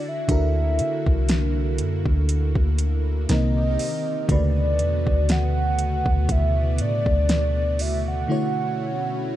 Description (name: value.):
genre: contemporary R&B.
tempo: 60 BPM.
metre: 4/4.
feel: swing 54% on 16ths.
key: unclear.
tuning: A4 = 440 Hz.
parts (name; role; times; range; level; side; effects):
hollow clarinet-like synth lead; melody; 0.0-9.4 s; D5 to F#5; -27 LUFS; right 1 dB; chorus, ping-pong delay.
FM electric piano with soft pad layer; accompaniment; 0.0-9.4 s; C3 to D5; -28 LUFS; equal; chorus.
lush unison pad; sustained chords; 0.0-9.4 s; B2 to D5; -31 LUFS; right 1 dB; chorus.
clean 808-style bass; bass; 0.3-8.3 s; C2 to D3; -22 LUFS; equal; none.
smooth R&B drum kit; drums; 0.3-8.0 s; hi-hat, kick drum, snare drum; -25 LUFS; equal; overdrive.
room: digital ambience.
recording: dark, warm production.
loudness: -20 LUFS.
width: side -13 dB against mid.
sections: 0.0-9.4 A section.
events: break 8.3-9.4.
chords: 0.3 F#7alt; 3.3 Cm7; 4.3 Bm9/D; 8.3 Dmaj9.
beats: | 0.29 1.29 2.29 3.29 | 4.29 5.29 6.29 7.29 | 8.29 9.29.